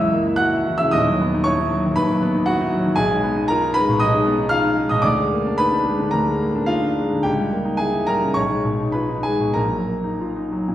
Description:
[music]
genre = classical, romantic character piece for solo piano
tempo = 94-122 BPM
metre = 4/4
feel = rubato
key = unclear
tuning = A4 = 440 Hz
[part]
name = warm grand piano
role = solo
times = 0.0-10.7 s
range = D#1 to F#6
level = -17 LUFS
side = equal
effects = none
[sound]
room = wet recital hall reverb, RT60 1.6 s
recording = heard from further back in the room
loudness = -17 LUFS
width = side -12 dB against mid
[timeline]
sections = 0.0-10.7 A section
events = none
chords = 0.0 A#dim/C#; 0.9 B/D#; 3.0 Abm/Cb; 5.0 Bb7/D; 7.3 Eb7/Db; 8.4 Abm/Cb; 9.6 Ebm/Bb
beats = 0.40 | 0.93 1.45 1.97 2.48 | 2.97 3.49 4.01 4.51 | 5.04 5.59 6.13 6.70 | 7.27 7.82 8.37 8.96 | 9.57 10.21

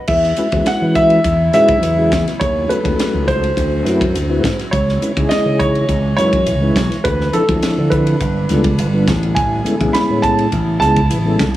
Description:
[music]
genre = electric jazz fusion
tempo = 104 BPM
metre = 4/4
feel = straight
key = E major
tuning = A4 = 439 Hz
[part]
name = dark grand piano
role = melody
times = 0.1-11.6 s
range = A4 to B5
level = -18 LUFS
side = right 1 dB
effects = slapback echo, plate reverb
[part]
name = icy glass pad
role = sustained chords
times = 0.8-11.6 s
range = C#3 to D#5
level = -26 LUFS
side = right 1 dB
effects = chorus, built-in reverb
[part]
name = slap bass with an envelope filter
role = bass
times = 0.1-11.5 s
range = G1 to E3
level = -17 LUFS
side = equal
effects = none
[part]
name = tight funk drum kit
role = drums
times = 0.1-11.6 s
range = crash cymbal, hi-hat, kick drum, ride cymbal, snare drum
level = -22 LUFS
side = equal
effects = none
[part]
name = mellow tonewheel organ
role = accompaniment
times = 0.4-11.6 s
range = F3 to C#5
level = -19 LUFS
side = left 1 dB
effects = slow rotary speaker, chorus vibrato, plate reverb
[sound]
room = light reverb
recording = small room ambience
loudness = -13 LUFS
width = side -14 dB against mid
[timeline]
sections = 0.1-11.6 A section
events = none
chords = 0.1 E69; 2.4 D#m7b5; 3.6 D13; 4.7 C#m9; 7.0 Dm7; 8.2 G9; 9.4 Amaj9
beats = | 0.09 0.67 1.25 1.83 | 2.41 2.99 3.57 4.15 | 4.73 5.31 5.89 6.47 | 7.05 7.63 8.21 8.79 | 9.37 9.95 10.53 11.11

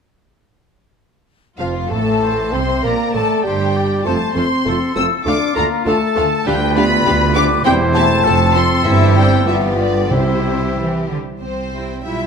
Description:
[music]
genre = quick classical-period movement for symphony orchestra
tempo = 99 BPM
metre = 2/4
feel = rubato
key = F major, C major from 6.5 s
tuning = A4 = 440 Hz
[part]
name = rich studio violin section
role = melody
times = 1.6-12.3 s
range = C5 to E6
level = -22 LUFS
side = left 3 dB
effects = none
[part]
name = rich studio violin section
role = second line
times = 1.6-12.3 s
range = F4 to F5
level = -27 LUFS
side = left 4 dB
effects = none
[part]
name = small flute group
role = second line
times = 1.6-10.8 s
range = C5 to E6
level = -23 LUFS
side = left 6 dB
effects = none
[part]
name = warm clarinet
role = second line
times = 1.6-11.1 s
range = E4 to C5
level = -26 LUFS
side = left 2 dB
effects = none
[part]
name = mellow bassoon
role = accompaniment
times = 1.6-11.1 s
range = F3 to C4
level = -23 LUFS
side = right 2 dB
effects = none
[part]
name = rich studio viola section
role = accompaniment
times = 1.6-12.3 s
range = F3 to G4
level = -24 LUFS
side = right 2 dB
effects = none
[part]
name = dark French horn section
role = sustained chords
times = 1.6-10.8 s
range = C3 to E4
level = -23 LUFS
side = left 5 dB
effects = none
[part]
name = rich studio cello section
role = bass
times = 1.6-12.3 s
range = D2 to E4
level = -21 LUFS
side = right 2 dB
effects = none
[part]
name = rich studio double bass section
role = bass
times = 1.6-12.3 s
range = E1 to D2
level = -22 LUFS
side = right 5 dB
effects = none
[part]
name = clear oboe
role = second line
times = 2.2-11.1 s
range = F4 to E5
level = -24 LUFS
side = equal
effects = none
[part]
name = timpani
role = percussion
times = 8.8-11.0 s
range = G2 to C3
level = -24 LUFS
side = equal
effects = none
[sound]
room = moderate concert hall reverb, RT60 1.9 s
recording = none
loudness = -13 LUFS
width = side -6 dB against mid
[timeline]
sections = 1.6-11.4 A section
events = none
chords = 1.6 F; 2.8 Gmadd9; 4.1 F; 5.3 Dm; 6.5 G7/D; 7.7 C/E; 8.3 F; 8.9 C/G; 9.5 G7; 10.1 C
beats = | 1.60 2.22 | 2.85 3.45 | 4.06 4.67 | 5.27 5.87 | 6.46 7.06 | 7.65 8.26 | 8.86 9.48 | 10.12 10.77 | 11.41 12.05

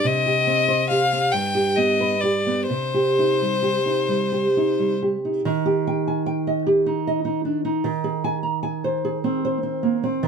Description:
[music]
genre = romantic duo for violin and classical guitar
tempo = 42-51 BPM (dotted quarters)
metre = 6/8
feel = rubato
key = C minor, Eb major from 5.5 s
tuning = A4 = 444 Hz
[part]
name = bright violin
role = melody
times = 0.0-5.0 s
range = C5 to G5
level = -21 LUFS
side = left 5 dB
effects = none
[part]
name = nylon-string guitar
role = accompaniment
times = 0.0-10.3 s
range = G2 to Bb5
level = -21 LUFS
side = right 2 dB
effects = none
[sound]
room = light reverb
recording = close, detailed microphones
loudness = -19 LUFS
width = side -6 dB against mid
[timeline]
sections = 0.0-5.5 A section; 5.5-10.3 B section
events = none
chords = 0.0 Cm; 1.3 G; 2.7 Cm; 5.5 Eb; 7.9 Ab/Eb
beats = | 0.04 1.34 | 2.69 4.09 | 5.45 6.67 | 7.86 9.06 | 10.27

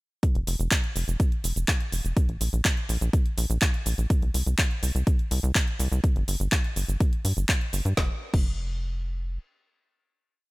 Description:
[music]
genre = progressive house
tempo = 124 BPM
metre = 4/4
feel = straight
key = unclear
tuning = A4 = 440 Hz
[part]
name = deep house drum kit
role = drums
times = 0.2-8.5 s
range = cabasa, crash cymbal, handclaps, hi-hat, snare drum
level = -29 LUFS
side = equal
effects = sidechain pumping on hats, sidechain pumping on perc, sidechain pumping on cymbals
[part]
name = electronic kick drum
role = drums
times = 0.2-8.5 s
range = none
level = -24 LUFS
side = equal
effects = none
[part]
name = tight sequencer bass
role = bass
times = 0.4-9.4 s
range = F1 to G2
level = -26 LUFS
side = equal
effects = tube saturation, sidechain pumping
[sound]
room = little or no reverb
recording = none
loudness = -23 LUFS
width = side -21 dB against mid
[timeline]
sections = 0.2-8.0 drop; 8.0-10.5 final chord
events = drop 0.2-8.0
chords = none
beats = | 0.23 0.71 1.20 1.68 | 2.17 2.65 3.13 3.62 | 4.10 4.59 5.07 5.55 | 6.04 6.52 7.00 7.49 | 7.97 8.46 8.94

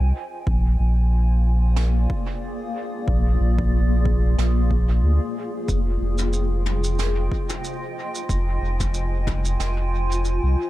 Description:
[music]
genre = ambient dub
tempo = 92 BPM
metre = 4/4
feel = swing 56% on 16ths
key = F dorian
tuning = A4 = 440 Hz
[part]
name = granular cloud pad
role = sustained chords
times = 0.0-10.7 s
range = Bb3 to Ab5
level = -28 LUFS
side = left 1 dB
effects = built-in reverb
[part]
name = warm sub bass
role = bass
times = 0.0-10.6 s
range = F1 to D2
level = -19 LUFS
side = equal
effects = none
[part]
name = electronic kick drum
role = drums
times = 0.5-9.4 s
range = none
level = -27 LUFS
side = equal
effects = overdrive
[part]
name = jazz brush drum kit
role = drums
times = 1.8-10.4 s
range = shaker, snare drum, toms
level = -33 LUFS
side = left 1 dB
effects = dub echo
[sound]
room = small room ambience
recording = echo-heavy mix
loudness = -20 LUFS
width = side -16 dB against mid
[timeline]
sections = 0.0-10.7 A section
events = none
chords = 0.5 Bb9; 5.7 Fm9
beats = | 0.47 1.12 1.77 2.42 | 3.08 3.73 4.38 5.03 | 5.68 6.34 6.99 7.64 | 8.29 8.95 9.60 10.25

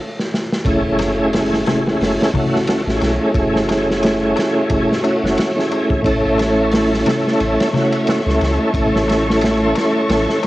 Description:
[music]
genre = trip hop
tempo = 89 BPM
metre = 4/4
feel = swing 57% on 16ths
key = F# minor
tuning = A4 = 439 Hz
[part]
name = crunchy breakbeat drum kit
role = drums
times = 0.2-10.5 s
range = hi-hat, kick drum, ride cymbal, snare drum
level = -20 LUFS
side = equal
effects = cassette tape
[part]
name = tonewheel organ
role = accompaniment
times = 0.6-10.4 s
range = A3 to A4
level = -16 LUFS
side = equal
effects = chorus vibrato, fast rotary speaker, tremolo, vintage 12-bit sampler grit, cassette tape, tape echo
[part]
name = dark symphonic string section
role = sustained chords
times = 0.7-10.5 s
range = A3 to C#6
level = -25 LUFS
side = equal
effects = cassette tape
[part]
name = soft dub sub bass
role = bass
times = 0.7-10.3 s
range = F#1 to C#2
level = -24 LUFS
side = equal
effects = tube saturation
[part]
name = darbuka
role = percussion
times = 0.7-10.5 s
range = none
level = -27 LUFS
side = left 4 dB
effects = none
[part]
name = impact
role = sound effects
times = 0.7-3.4 s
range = none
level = -30 LUFS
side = equal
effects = none
[sound]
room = light reverb, small room ambience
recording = home recording on cassette, vinyl crackle, nothing above 10.7 kHz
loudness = -14 LUFS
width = side -16 dB against mid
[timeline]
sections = 0.7-10.5 A section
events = stop 0.0-0.7; drum fill 0.1-0.7; impact 0.7-3.4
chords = 0.0 N.C.; 0.7 F#m7; 6.0 A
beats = | 0.66 1.33 2.00 2.68 | 3.35 4.03 4.70 5.38 | 6.05 6.72 7.40 8.07 | 8.75 9.42 10.09

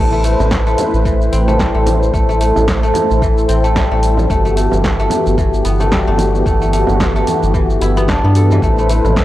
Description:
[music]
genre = organic downtempo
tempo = 111 BPM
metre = 4/4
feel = swing 56% on 16ths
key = A dorian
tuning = A4 = 440 Hz
[part]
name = warm analog pad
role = sustained chords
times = 0.0-9.2 s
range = E3 to C5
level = -19 LUFS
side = equal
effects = chorus, sidechain pumping
[part]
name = guzheng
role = arpeggios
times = 0.0-9.2 s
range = E3 to A4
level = -18 LUFS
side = left 2 dB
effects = analog delay
[part]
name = round analog bass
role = bass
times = 0.0-9.2 s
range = G1 to G2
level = -15 LUFS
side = equal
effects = tube saturation, sidechain pumping
[part]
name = deep house drum kit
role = drums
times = 0.1-9.2 s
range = hi-hat, shaker, snare drum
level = -22 LUFS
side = equal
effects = none
[part]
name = congas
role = percussion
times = 0.1-9.1 s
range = none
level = -24 LUFS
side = right 3 dB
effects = none
[part]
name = electronic kick drum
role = drums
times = 0.5-9.2 s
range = none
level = -19 LUFS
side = equal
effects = none
[sound]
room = light reverb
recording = dry, gritty hardware recording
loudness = -11 LUFS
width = side -14 dB against mid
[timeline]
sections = 0.0-9.2 A section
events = none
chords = 0.0 Am7; 4.3 Em7/G; 8.6 Am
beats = 0.52 1.06 1.60 | 2.14 2.68 3.22 3.76 | 4.30 4.84 5.38 5.92 | 6.46 7.00 7.54 8.08 | 8.62 9.16

